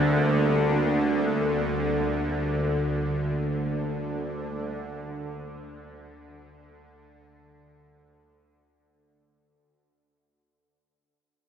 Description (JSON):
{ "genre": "dark ambient drone", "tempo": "free time", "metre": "none", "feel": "none", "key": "unclear", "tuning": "A4 = 440 Hz", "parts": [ { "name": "sweeping resonant pad", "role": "sustained chords", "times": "0.0-9.4 s", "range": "D3 to D4", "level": "-34 LUFS", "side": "equal", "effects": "chorus" }, { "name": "bowed-like drone", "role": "drone", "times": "0.0-9.5 s", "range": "D2 to D3", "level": "-25 LUFS", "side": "equal", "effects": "built-in reverb, phaser" } ], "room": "wet huge ambient reverb, RT60 8.4 s", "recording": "none", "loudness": "-24 LUFS", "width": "side -8 dB against mid", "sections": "0.0-9.4 A section", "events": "fade-out on analog synth pad 0.0-9.4; fade-out 0.0-9.4", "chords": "0.0 Gm/D" }